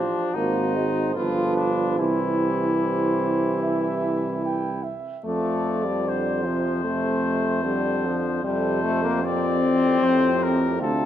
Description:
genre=classical, brass quintet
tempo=75 BPM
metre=4/4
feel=straight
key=C major, F major from 5.3 s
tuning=A4 = 440 Hz
part: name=clear trumpet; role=melody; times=0.0-11.1 s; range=D4 to D5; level=-29 LUFS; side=left 6 dB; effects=none
part: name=mellow flugelhorn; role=second line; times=0.0-11.1 s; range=F4 to G5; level=-31 LUFS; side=right 6 dB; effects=none
part: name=clear French horn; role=accompaniment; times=0.0-11.1 s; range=F3 to A4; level=-26 LUFS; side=left 4 dB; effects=none
part: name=clear euphonium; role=accompaniment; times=0.0-11.1 s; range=A2 to Bb3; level=-28 LUFS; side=right 2 dB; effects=none
part: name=clear tuba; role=bass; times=0.0-11.1 s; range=G1 to F2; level=-26 LUFS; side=right 2 dB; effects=none
room=moderate recital hall reverb, RT60 1.8 s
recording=none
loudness=-21 LUFS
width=side -11 dB against mid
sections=0.0-5.3 A section; 5.3-11.1 B section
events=none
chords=0.3 Ab7; 1.2 G9; 2.0 C; 5.3 F; 8.4 C5/F; 10.0 F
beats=0.35 1.16 | 1.98 2.81 3.63 4.45 | 5.26 6.07 6.87 7.66 | 8.45 9.24 10.03 10.81

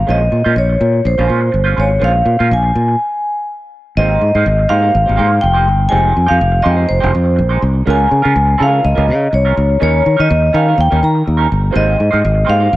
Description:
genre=disco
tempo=124 BPM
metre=4/4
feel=swing 56% on 16ths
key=unclear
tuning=A4 = 442 Hz
part: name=vibraphone with medium mallets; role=melody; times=0.0-12.8 s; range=C5 to Bb5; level=-15 LUFS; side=equal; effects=none
part: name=fingered electric bass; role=bass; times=0.0-12.8 s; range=F1 to Eb3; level=-13 LUFS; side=equal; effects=none
part: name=clean electric guitar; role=accompaniment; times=0.1-12.7 s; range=G3 to C5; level=-20 LUFS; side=right 5 dB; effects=wah, spring reverb
room=studio ambience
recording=none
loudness=-11 LUFS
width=side -16 dB against mid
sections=0.0-4.0 A section; 4.0-12.8 B section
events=stop 3.0-4.0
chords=0.1 Bbm9; 4.0 Fm9; 7.9 Db6; 9.8 Eb7; 11.7 Fm9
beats=| 0.08 0.56 1.05 1.54 | 2.02 2.51 3.00 3.48 | 3.97 4.46 4.94 5.43 | 5.92 6.40 6.89 7.37 | 7.86 8.34 8.83 9.32 | 9.80 10.29 10.77 11.26 | 11.74 12.23 12.72

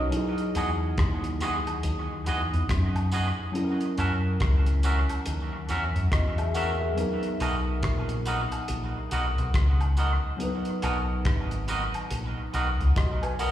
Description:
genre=lovers rock reggae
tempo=70 BPM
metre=4/4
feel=swing 61% on 16ths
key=B major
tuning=A4 = 440 Hz
part: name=tine electric piano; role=accompaniment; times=0.0-13.5 s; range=F#3 to G#5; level=-32 LUFS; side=left 1 dB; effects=analog chorus
part: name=deep dub fingered electric bass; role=bass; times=0.0-13.5 s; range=G#1 to F#2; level=-26 LUFS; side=equal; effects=none
part: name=cloth-damped thuddy drum kit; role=drums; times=0.1-13.5 s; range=hi-hat, kick drum, rim click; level=-30 LUFS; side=equal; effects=tape echo
part: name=twangy electric guitar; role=stabs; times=0.6-13.5 s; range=B3 to E5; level=-32 LUFS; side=right 2 dB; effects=tape echo, slapback echo
part: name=tambourine and woodblock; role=percussion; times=0.6-13.5 s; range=none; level=-42 LUFS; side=left 1 dB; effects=tape echo, slapback echo
room=light reverb, studio reverb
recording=live gig heard through the venue's PA, recital hall reverb, small room ambience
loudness=-24 LUFS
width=side -12 dB against mid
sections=0.0-13.5 A section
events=none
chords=0.1 Emaj9; 3.6 F#7; 7.0 Bmaj7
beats=| 0.13 0.98 1.84 2.70 | 3.55 4.41 5.26 6.12 | 6.98 7.83 8.69 9.54 | 10.40 11.25 12.11 12.96

